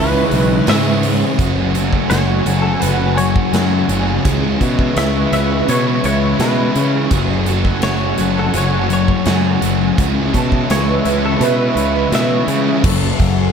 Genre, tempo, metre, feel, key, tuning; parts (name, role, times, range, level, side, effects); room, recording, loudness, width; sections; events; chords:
rock, shoegaze and dream pop; 84 BPM; 4/4; straight; F# minor; A4 = 440 Hz
direct-recorded clean electric guitar; melody; 0.0-12.6 s; A4 to E5; -24 LUFS; left 1 dB; ensemble chorus, tape echo
phased analog pad; sustained chords; 0.0-13.5 s; B4 to C#6; -24 LUFS; equal; phaser, chorus
picked twelve-string acoustic guitar; arpeggios; 0.0-13.5 s; F#4 to A5; -26 LUFS; right 8 dB; ensemble chorus, tape echo
crunchy overdriven guitar; riff; 0.0-12.8 s; F#2 to F#4; -21 LUFS; right 11 dB; reverse reverb
thick fuzz guitar; riff; 0.0-13.5 s; F#2 to C#4; -19 LUFS; left 10 dB; distortion, lush chorus
fuzz picked electric bass; bass; 0.0-13.5 s; F#1 to C#3; -18 LUFS; equal; overdrive
big rock drum kit; drums; 0.3-13.4 s; crash cymbal, hi-hat, kick drum, snare drum; -21 LUFS; equal
moderate plate reverb, RT60 1.9 s; dreamy mix soaked in reverb; -13 LUFS; side -7 dB against mid
0.0-1.4 A section; 1.4-12.8 B section
0.0 C#m7; 1.4 F#madd9; 4.3 C#m7; 7.1 F#madd9; 10.0 C#m7; 12.8 F#madd9